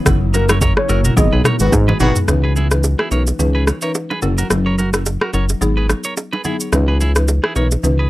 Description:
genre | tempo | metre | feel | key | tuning
afrobeats | 108 BPM | 4/4 | swing 55% on 16ths | C# dorian | A4 = 442 Hz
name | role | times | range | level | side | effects
buzzing marimba with medium mallets | accompaniment | 0.0-8.1 s | E3 to B4 | -23 LUFS | left 2 dB | none
glassy FM pad | sustained chords | 0.0-2.3 s | C#3 | -28 LUFS | right 1 dB | ensemble chorus, built-in reverb, sidechain pumping
fat analog bass | bass | 0.1-8.1 s | F#1 to G#2 | -16 LUFS | equal | none
afro-pop drum kit | drums | 0.1-8.0 s | kick drum, rim click, shaker, toms | -17 LUFS | equal | none
congas and bongos | percussion | 0.1-8.0 s | none | -26 LUFS | right 3 dB | none
clean electric guitar | riff | 0.3-8.1 s | E4 to C#5 | -24 LUFS | right 3 dB | analog delay
soft octave-layered synth lead | melody | 0.4-2.1 s | A#4 to D#5 | -23 LUFS | left 1 dB | chorus, analog delay
warm horn section | second line | 1.6-2.2 s | D#3 to F#4 | -21 LUFS | equal | none
room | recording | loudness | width
little or no reverb | dry, gritty hardware recording | -14 LUFS | side -17 dB against mid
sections
0.0-2.3 A section; 2.3-8.1 B section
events
band accent 0.1-2.3; drum fill 1.7-2.3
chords
0.0 F#7; 1.2 G#m7; 2.3 C#m9; 4.2 F#7; 5.6 G#m7; 6.7 C#m9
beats
| 0.06 0.61 1.17 1.73 | 2.28 2.84 3.39 3.95 | 4.50 5.06 5.62 6.17 | 6.73 7.28 7.84

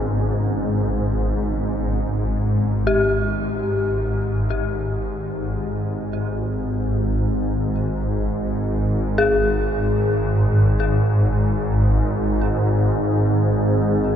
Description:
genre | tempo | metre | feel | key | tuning
dark ambient drone | free time | none | none | G# harmonic minor | A4 = 440 Hz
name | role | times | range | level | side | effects
sweeping resonant pad | sustained chords | 0.0-2.0 s | G#3 to C#4 | -35 LUFS | right 1 dB | none
swarming drone | drone | 0.0-14.2 s | G#1 to G#2 | -19 LUFS | equal | built-in reverb
dark detuned synth bell | arpeggios | 2.9-14.2 s | G4 to G#4 | -25 LUFS | left 2 dB | chorus, tremolo, ping-pong delay
room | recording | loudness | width
wet huge ambient reverb, RT60 9.3 s | dreamy mix soaked in reverb | -18 LUFS | side -9 dB against mid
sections
0.0-2.0 A section; 2.0-14.2 B section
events
none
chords
0.0 G#m; 2.0 N.C.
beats
free time

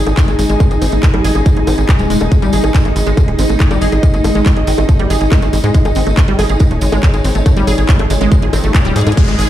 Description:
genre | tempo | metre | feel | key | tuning
psychedelic trance | 140 BPM | 4/4 | straight | unclear | A4 = 442 Hz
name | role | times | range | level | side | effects
swarming drone | sustained chords | 0.0-9.5 s | Ab3 to Ab4 | -21 LUFS | right 1 dB | built-in reverb, sidechain pumping
tight sequencer bass | bass | 0.0-9.5 s | Eb1 to Ab2 | -15 LUFS | equal | none
airy breathy pad | texture | 0.0-9.2 s | Eb4 to Ab5 | -23 LUFS | equal | chorus, sidechain pumping
wide unison pluck | riff | 0.1-9.4 s | G3 to Ab4 | -19 LUFS | moving between left 3 dB and right 5 dB | auto-pan, sidechain pumping, tape echo
garage drum kit | drums | 0.1-9.5 s | bongos, crash cymbal, handclaps, hi-hat | -22 LUFS | left 2 dB | small room ambience
tambourine | percussion | 0.1-9.5 s | none | -31 LUFS | right 5 dB | none
electronic kick drum | drums | 0.2-9.3 s | none | -10 LUFS | equal | small room ambience
vowel-sweep wobble bass | second line | 1.4-1.7, 4.8-5.2, 8.2-8.6 s | Ab3 to Eb4 | -30 LUFS | left 3 dB | none
riser and downlifter | sound effects | 7.3-9.5 s | none | -25 LUFS | equal | none
room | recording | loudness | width
light reverb | played on a big sound system in a bare room, large studio reverb | -10 LUFS | side -12 dB against mid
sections
0.0-9.2 A section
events
filter sweep on synth arpeggio sound 0.0-9.2; drum fill 9.0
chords
0.0 Ab5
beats
0.17 | 0.60 1.03 1.46 1.89 | 2.32 2.75 3.17 3.60 | 4.03 4.46 4.89 5.32 | 5.75 6.17 6.60 7.03 | 7.46 7.89 8.32 8.74 | 9.17

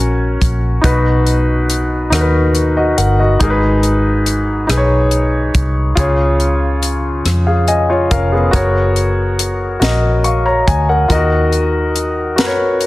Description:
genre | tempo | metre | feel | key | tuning
slow gospel | 47 BPM (dotted quarters) | 6/8 | straight | F# major | A4 = 440 Hz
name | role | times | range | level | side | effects
clear concert grand piano | accompaniment | 0.0-12.9 s | G#2 to C#6 | -15 LUFS | left 1 dB | none
vintage muted fingered electric bass | bass | 0.0-12.9 s | E#1 to F#2 | -16 LUFS | equal | none
tight funk drum kit | drums | 0.4-12.9 s | hi-hat, kick drum, rim click, snare drum | -17 LUFS | equal | none
room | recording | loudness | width
light reverb, small room reverb | dense, heavily limited modern master | -12 LUFS | side -18 dB against mid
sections
0.0-12.9 A section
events
grand piano fill 7.3-8.5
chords
0.0 F#; 0.8 B; 3.4 G#m; 6.0 C#; 8.5 F#; 11.1 D#m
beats
| 0.84 2.12 | 3.41 4.69 | 5.97 7.25 | 8.54 9.82 | 11.10 12.38

